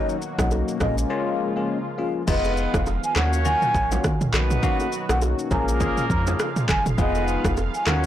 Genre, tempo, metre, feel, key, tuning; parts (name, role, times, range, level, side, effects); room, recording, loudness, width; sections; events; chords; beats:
afrobeats; 102 BPM; 4/4; swing 58% on 16ths; A4 = 440 Hz
mellow hollow concert flute; melody; 0.0-8.0 s; Eb5 to Bb5; -28 LUFS; right 1 dB; digital delay, plate reverb
bell-like tine electric piano; accompaniment; 0.0-8.1 s; F#3 to Bb4; -27 LUFS; left 6 dB; phaser, plate reverb
warm analog pad; sustained chords; 0.0-8.1 s; B2 to F5; -32 LUFS; right 2 dB; chorus, tremolo, plate reverb
deep house drum kit; drums; 0.1-8.1 s; crash cymbal, handclaps, kick drum, rim click, shaker, toms; -25 LUFS; equal; overdrive
plucky analog bass; bass; 0.4-8.1 s; F1 to F2; -24 LUFS; equal
bongos and congas; percussion; 0.4-8.0 s; -32 LUFS; right 6 dB
mellow horn section; second line; 2.3-8.1 s; F3 to Db5; -30 LUFS; right 2 dB; plate reverb
moderate small room reverb, RT60 0.6 s; blown-out, overdriven recording, overdrive; -20 LUFS; side -11 dB against mid
0.0-2.3 A section; 2.3-8.1 B section
0.0 Bmaj7; 0.8 Bbm7; 2.3 Fm7b5; 3.2 Ebm9; 4.3 Bmaj7; 5.5 Bbm7; 7.0 Fm7b5
0.51 1.10 1.69 | 2.28 2.87 3.45 4.04 | 4.63 5.22 5.81 6.39 | 6.98 7.57